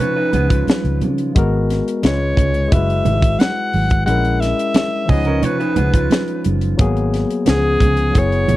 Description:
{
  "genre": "lush 1970s-style soul",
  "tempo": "88 BPM",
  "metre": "4/4",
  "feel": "straight",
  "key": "unclear",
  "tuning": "A4 = 440 Hz",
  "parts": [
    { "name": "edgy alto saxophone", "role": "melody", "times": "0.0-8.6 s", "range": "G#4 to F#5", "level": "-20 LUFS", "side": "equal", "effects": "none" },
    { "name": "barky tine electric piano", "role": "accompaniment", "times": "0.0-8.6 s", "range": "E#3 to B4", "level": "-21 LUFS", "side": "left 4 dB", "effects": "overdrive" },
    { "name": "electric guitar through a small old amp", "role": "riff", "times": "0.0-6.8 s", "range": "G#3 to C#5", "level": "-24 LUFS", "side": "right 7 dB", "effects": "none" },
    { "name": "tight funk drum kit", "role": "drums", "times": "0.0-8.6 s", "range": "hi-hat, kick drum, snare drum", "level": "-16 LUFS", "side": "equal", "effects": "none" },
    { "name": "congas", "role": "percussion", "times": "0.0-8.6 s", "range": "none", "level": "-25 LUFS", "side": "right 5 dB", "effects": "none" },
    { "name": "vintage muted fingered electric bass", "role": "bass", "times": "0.3-8.6 s", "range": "F#1 to C#3", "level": "-18 LUFS", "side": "equal", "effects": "none" }
  ],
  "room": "small room ambience",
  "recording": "dry, close 1970s-style studio recording",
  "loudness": "-14 LUFS",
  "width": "side -16 dB against mid",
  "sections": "0.0-8.6 A section",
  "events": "none",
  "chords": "0.0 C#9; 1.4 G#m9; 2.0 C#7; 2.7 F#9sus4; 4.1 A#m7b5; 5.1 C#9; 6.8 G#m9; 7.5 C#7",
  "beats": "0.00 0.68 | 1.36 2.04 2.72 3.40 | 4.08 4.76 5.44 6.12 | 6.79 7.47 8.15"
}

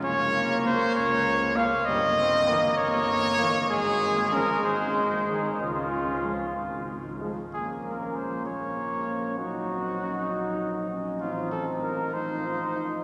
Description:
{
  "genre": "classical, brass quintet",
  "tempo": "65 BPM (dotted quarters)",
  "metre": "6/8",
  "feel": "rubato",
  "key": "Db major, Bb minor from 7.5 s",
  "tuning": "A4 = 438 Hz",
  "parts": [
    { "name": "mellow trumpet", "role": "melody", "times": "0.0-13.0 s", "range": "Db4 to F5", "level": "-29 LUFS", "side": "equal", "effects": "none" },
    { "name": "clear flugelhorn", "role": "second line", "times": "0.0-13.0 s", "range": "G3 to F4", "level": "-33 LUFS", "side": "equal", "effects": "none" },
    { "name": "dark bass trombone", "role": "bass", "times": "0.0-13.0 s", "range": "Gb1 to Db2", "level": "-39 LUFS", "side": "equal", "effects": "none" },
    { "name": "clear trombone", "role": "accompaniment", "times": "0.7-13.0 s", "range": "Db3 to F4", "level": "-40 LUFS", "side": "equal", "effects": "none" },
    { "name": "dark French horn", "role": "accompaniment", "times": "0.7-13.0 s", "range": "F3 to Db4", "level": "-39 LUFS", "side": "equal", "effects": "none" }
  ],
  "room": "wet cathedral reverb, RT60 6.7 s",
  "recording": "none",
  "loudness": "-27 LUFS",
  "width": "mono",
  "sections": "0.0-7.5 A section; 7.5-13.0 B section",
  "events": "none",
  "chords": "0.0 Gb; 1.9 Gdim; 3.7 N.C.; 4.6 Ab; 5.6 Db; 7.5 Bbm; 9.4 Ebm/Bb; 11.2 F7/A",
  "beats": "| 0.04 0.95 | 1.86 2.78 | 3.70 4.64 | 5.60 6.56 | 7.53 8.46 | 9.38 10.31 | 11.23 12.14"
}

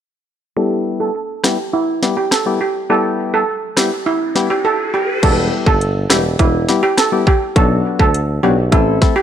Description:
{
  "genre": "dancehall",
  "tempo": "103 BPM",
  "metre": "4/4",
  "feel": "straight",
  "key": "E minor",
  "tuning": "A4 = 437 Hz",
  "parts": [
    { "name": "steel pan", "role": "melody", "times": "0.6-9.2 s", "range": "E4 to A4", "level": "-17 LUFS", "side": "right 4 dB", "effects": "low-pass filter, tape echo" },
    { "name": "percussive organ stab", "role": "accompaniment", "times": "0.6-9.2 s", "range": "F#3 to A4", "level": "-19 LUFS", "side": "left 5 dB", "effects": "chorus, low-pass filter" },
    { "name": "island pop drum kit", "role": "drums", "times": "1.4-9.2 s", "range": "crash cymbal, hi-hat, kick drum, rim click, snare drum", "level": "-16 LUFS", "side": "equal", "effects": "overdrive, vintage 12-bit sampler grit" },
    { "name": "riser", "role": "sound effects", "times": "4.0-5.2 s", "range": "none", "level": "-25 LUFS", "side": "left 1 dB", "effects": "none" },
    { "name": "warm tuba", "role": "bass", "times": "5.2-9.0 s", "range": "E1 to D2", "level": "-18 LUFS", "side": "equal", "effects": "none" }
  ],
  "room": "little or no reverb",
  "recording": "none",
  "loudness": "-13 LUFS",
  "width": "side -9 dB against mid",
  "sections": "0.6-5.2 A section; 5.2-9.2 B section",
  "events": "filter sweep 0.6-5.2; riser 4.0-5.2; silent gap 4.6-5.2",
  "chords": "0.6 Em; 7.6 Bm",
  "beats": "| 0.57 1.15 1.73 2.32 | 2.90 3.48 4.06 4.65 | 5.23 5.81 6.39 6.98 | 7.56 8.14 8.72"
}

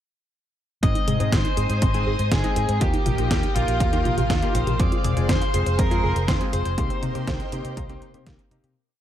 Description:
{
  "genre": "italo disco",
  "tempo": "121 BPM",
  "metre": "4/4",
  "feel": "straight",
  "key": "C minor",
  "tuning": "A4 = 440 Hz",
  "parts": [
    { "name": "smooth overdriven lead guitar", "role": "melody", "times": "0.8-8.2 s", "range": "F4 to Eb5", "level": "-28 LUFS", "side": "left 1 dB", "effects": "shimmer reverb" },
    { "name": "string machine, full ensemble", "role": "sustained chords", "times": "0.8-8.7 s", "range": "Ab4 to Eb6", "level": "-32 LUFS", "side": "right 1 dB", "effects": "phaser, ensemble chorus, shimmer reverb" },
    { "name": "analog pluck", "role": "arpeggios", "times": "0.8-8.7 s", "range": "Bb3 to C5", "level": "-33 LUFS", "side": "right 3 dB", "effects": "chorus, digital delay, shimmer reverb" },
    { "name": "clear electric grand piano", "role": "stabs", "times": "0.8-8.7 s", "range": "Ab3 to Ab4", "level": "-31 LUFS", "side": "left 3 dB", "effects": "shimmer reverb" },
    { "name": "fingered electric bass with an envelope filter", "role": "bass", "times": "0.8-8.7 s", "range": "F1 to C3", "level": "-25 LUFS", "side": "equal", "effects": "tube saturation" },
    { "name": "detuned 8-bit digital drum machine", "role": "drums", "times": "0.8-8.7 s", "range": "hi-hat, snare drum, toms", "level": "-28 LUFS", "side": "left 2 dB", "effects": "none" },
    { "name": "electronic kick drum", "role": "drums", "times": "0.8-8.4 s", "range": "none", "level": "-25 LUFS", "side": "equal", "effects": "overdrive" }
  ],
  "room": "light reverb",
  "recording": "none",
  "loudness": "-20 LUFS",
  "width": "side -11 dB against mid",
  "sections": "0.8-8.8 verse",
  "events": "filter sweep on synth arpeggio sound 0.8-8.8; fade-out 6.1-8.8",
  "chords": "0.8 Ab; 2.8 Ebadd9; 4.8 Fm; 6.8 Cm7",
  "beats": "| 0.83 1.32 1.82 2.32 | 2.81 3.31 3.80 4.30 | 4.80 5.29 5.79 6.28 | 6.78 7.28 7.77 8.27"
}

